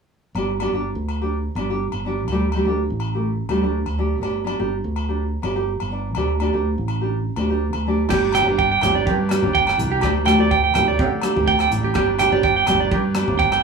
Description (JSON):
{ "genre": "highlife guitar band", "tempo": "124 BPM", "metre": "4/4", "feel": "swing 53% on 16ths", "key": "G major", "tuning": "A4 = 437 Hz", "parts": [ { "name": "fingered electric bass", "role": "bass", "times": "0.3-13.6 s", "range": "G1 to D3", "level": "-24 LUFS", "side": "right 1 dB", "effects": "none" }, { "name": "nylon-string guitar", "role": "accompaniment", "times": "0.4-13.4 s", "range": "G3 to G4", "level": "-23 LUFS", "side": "equal", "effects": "none" }, { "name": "agogo bells", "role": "percussion", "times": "0.4-13.6 s", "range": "none", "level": "-30 LUFS", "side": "left 2 dB", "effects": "none" }, { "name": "combo organ", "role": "sustained chords", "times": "8.1-13.6 s", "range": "A3 to G4", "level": "-30 LUFS", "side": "right 1 dB", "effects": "none" }, { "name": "clean electric guitar", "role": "arpeggios", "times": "8.1-13.6 s", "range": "G4 to G5", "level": "-18 LUFS", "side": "right 6 dB", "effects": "none" }, { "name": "tight funk drum kit", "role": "drums", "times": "8.1-13.6 s", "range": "crash cymbal, hi-hat, kick drum, rim click", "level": "-26 LUFS", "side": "equal", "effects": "none" }, { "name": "congas", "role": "percussion", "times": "8.3-13.4 s", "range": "none", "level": "-28 LUFS", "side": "equal", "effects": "none" } ], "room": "wet studio ambience, RT60 0.5 s", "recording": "band playing live in one room, small room ambience", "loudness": "-18 LUFS", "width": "side -5 dB against mid", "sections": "0.4-8.1 A section; 8.1-13.6 B section", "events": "none", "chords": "0.4 G; 2.3 Dsus4; 4.2 G; 6.2 Dsus4; 8.1 G; 10.0 Dsus4; 12.0 G", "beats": "| 0.36 0.84 1.33 1.81 | 2.30 2.78 3.27 3.75 | 4.24 4.72 5.20 5.69 | 6.17 6.66 7.14 7.62 | 8.10 8.59 9.07 9.55 | 10.03 10.51 10.99 11.47 | 11.95 12.43 12.91 13.39" }